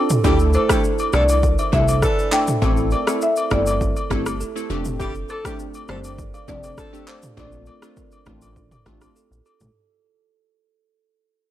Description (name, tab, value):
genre	afrobeats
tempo	101 BPM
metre	4/4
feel	straight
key	unclear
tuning	A4 = 440 Hz
part	buzzing kalimba	riff	0.0-9.6 s	E4 to F5	-28 LUFS	right 9 dB	tape echo
part	deep house drum kit	drums	0.1-9.7 s	handclaps, kick drum, rim click, shaker, toms	-23 LUFS	equal	none
part	warm horn section	second line	0.2-7.2 s	E3 to A4	-28 LUFS	left 2 dB	none
part	glassy wavetable pluck	accompaniment	0.2-9.1 s	A3 to A4	-26 LUFS	left 1 dB	chorus
part	plucky analog bass	bass	0.2-9.7 s	F1 to D2	-21 LUFS	equal	none
part	agogo bells	percussion	0.3-9.6 s	none	-29 LUFS	left 4 dB	none
part	marimba with medium mallets	melody	0.5-9.1 s	A4 to G5	-24 LUFS	left 2 dB	none
room	small room ambience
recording	dry, gritty hardware recording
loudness	-17 LUFS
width	side -12 dB against mid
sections	0.0-9.8 A section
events	fade-out 0.0-9.8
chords	0.2 Dsus2; 2.6 Am; 4.7 F6; 7.4 Bbmaj7